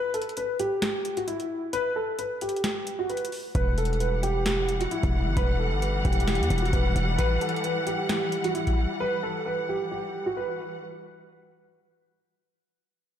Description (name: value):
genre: hip hop, trap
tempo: 132 BPM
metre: 4/4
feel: half-time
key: E minor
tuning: A4 = 440 Hz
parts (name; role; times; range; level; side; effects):
- dark concert grand piano; melody; 0.0-10.6 s; E4 to B4; -28 LUFS; equal; analog chorus, tape echo
- booming analog drum machine; drums; 0.1-8.9 s; hi-hat, kick drum, snare drum; -28 LUFS; equal; none
- warm studio string section; sustained chords; 3.5-10.8 s; E3 to F#5; -31 LUFS; left 2 dB; none
- hard-hitting 808-style bass; bass; 3.5-7.2 s; E1 to E2; -26 LUFS; equal; none
room: moderate lush hall reverb, RT60 2.0 s, small room ambience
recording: dreamy mix soaked in reverb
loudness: -24 LUFS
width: side -10 dB against mid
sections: 0.0-10.8 A section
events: break 0.0-3.5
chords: 0.0 N.C.; 3.5 Emadd9